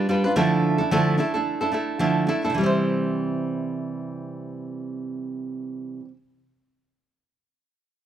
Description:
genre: pop.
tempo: 109 BPM.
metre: 4/4.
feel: swing 60% on 16ths.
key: C major.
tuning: A4 = 440 Hz.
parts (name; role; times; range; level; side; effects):
nylon-string guitar; accompaniment; 0.0-6.2 s; C3 to C5; -22 LUFS; right 2 dB; none.
room: light reverb.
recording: band playing live in one room.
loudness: -22 LUFS.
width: side -10 dB against mid.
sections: 0.0-2.6 A section; 2.6-4.8 B section.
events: none.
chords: 0.4 Dmadd9; 2.6 C.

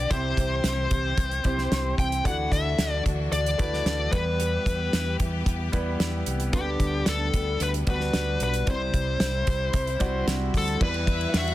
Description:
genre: piano-driven pop.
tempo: 112 BPM.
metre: 4/4.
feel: straight.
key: E minor.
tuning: A4 = 440 Hz.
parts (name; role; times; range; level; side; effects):
smooth overdriven lead guitar; melody; 0.0-11.5 s; G4 to G5; -28 LUFS; left 2 dB; none.
clear grand piano; accompaniment; 0.0-11.5 s; C3 to E5; -31 LUFS; right 1 dB; none.
bright studio string section; sustained chords; 0.0-11.5 s; C3 to G4; -37 LUFS; left 1 dB; none.
fingered electric bass; bass; 0.0-11.5 s; B1 to E2; -29 LUFS; equal; none.
damped 70s drum kit; drums; 0.1-11.5 s; crash cymbal, hi-hat, kick drum, ride cymbal, snare drum; -27 LUFS; equal; none.
dark studio violin section; second line; 11.1-11.5 s; E4 to F#5; -31 LUFS; left 1 dB; none.
room: small room ambience.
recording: dense, heavily limited modern master.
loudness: -23 LUFS.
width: side -15 dB against mid.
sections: 0.0-10.8 A section.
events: none.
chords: 0.1 C; 2.3 Dadd9; 4.1 Em; 6.5 G/D; 8.7 C; 10.8 Em.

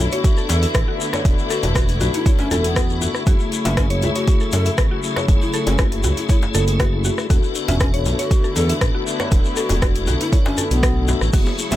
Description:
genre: afro house.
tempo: 119 BPM.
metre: 4/4.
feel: straight.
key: unclear.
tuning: A4 = 442 Hz.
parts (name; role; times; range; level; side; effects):
dark studio string section; sustained chords; 0.0-11.8 s; C#3 to E4; -27 LUFS; left 2 dB; sidechain pumping.
tonewheel organ; stabs; 0.0-11.8 s; A3 to A4; -27 LUFS; left 5 dB; overdrive, chorus vibrato, slow rotary speaker, sidechain pumping.
smooth synth bass; bass; 0.0-11.8 s; E1 to F#2; -20 LUFS; equal; sidechain pumping.
shekere; percussion; 0.0-11.8 s; none; -32 LUFS; left 5 dB; none.
breathy bright large pan pipes; melody; 0.1-11.8 s; B3 to A4; -28 LUFS; left 2 dB; ping-pong delay.
mallet-like synth pluck; arpeggios; 0.1-11.8 s; F#4 to E5; -28 LUFS; equal; chorus, cassette tape, sidechain pumping, ping-pong delay.
afro-pop drum kit; drums; 0.1-11.8 s; crash cymbal, hi-hat, rim click; -27 LUFS; left 1 dB; none.
electronic kick drum; drums; 0.2-11.4 s; none; -17 LUFS; equal; overdrive.
djembe; percussion; 0.5-11.8 s; none; -28 LUFS; left 2 dB; none.
congas; percussion; 11.3-11.8 s; none; -26 LUFS; right 4 dB; none.
room: little or no reverb.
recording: none.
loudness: -16 LUFS.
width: side -14 dB against mid.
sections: 0.0-11.8 A section.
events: none.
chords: 0.0 E7sus4; 3.3 F#m7; 7.3 E7sus4.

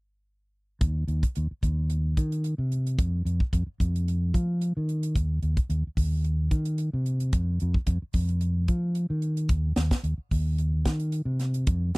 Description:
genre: afrobeat.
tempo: 110 BPM.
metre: 4/4.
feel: swing 54% on 16ths.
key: unclear.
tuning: A4 = 438 Hz.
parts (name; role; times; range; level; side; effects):
fingered electric bass; bass; 0.8-12.0 s; Eb2 to F3; -25 LUFS; equal; none.
tight funk drum kit; drums; 0.8-12.0 s; hi-hat, kick drum, snare drum; -26 LUFS; equal; none.
room: little or no reverb.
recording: dry, close 1970s-style studio recording, faint mains hum.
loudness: -24 LUFS.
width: side -28 dB against mid.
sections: 0.8-12.0 A section.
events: none.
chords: none.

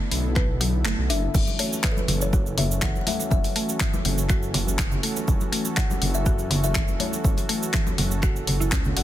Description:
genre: afro house.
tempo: 122 BPM.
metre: 4/4.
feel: swing 53% on 16ths.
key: F# minor.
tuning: A4 = 440 Hz.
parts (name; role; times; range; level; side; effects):
kalimba; melody; 0.0-9.0 s; A4 to F#5; -33 LUFS; left 7 dB; tape echo.
warm analog pad; sustained chords; 0.0-9.0 s; D3 to A4; -33 LUFS; right 2 dB; chorus, sidechain pumping.
mallet-like synth pluck; arpeggios; 0.1-9.0 s; C#3 to B4; -31 LUFS; left 1 dB; chorus, cassette tape, sidechain pumping, tape echo.
dark detuned saw bass; bass; 0.1-9.0 s; F#1 to C#2; -26 LUFS; equal; sidechain pumping.
deep house drum kit; drums; 0.1-9.0 s; crash cymbal, finger snaps, handclaps, hi-hat; -28 LUFS; left 1 dB; soft clipping on snare.
electronic kick drum; drums; 0.4-8.8 s; none; -24 LUFS; equal; none.
cabasa; percussion; 1.3-8.9 s; none; -33 LUFS; right 6 dB; none.
congas; percussion; 1.3-8.9 s; none; -31 LUFS; equal; none.
room: little or no reverb.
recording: dense, heavily limited modern master.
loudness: -21 LUFS.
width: side -13 dB against mid.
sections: 0.0-9.0 A section.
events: kick drops out 0.9-1.3.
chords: 0.0 Bm7; 1.3 F#m7.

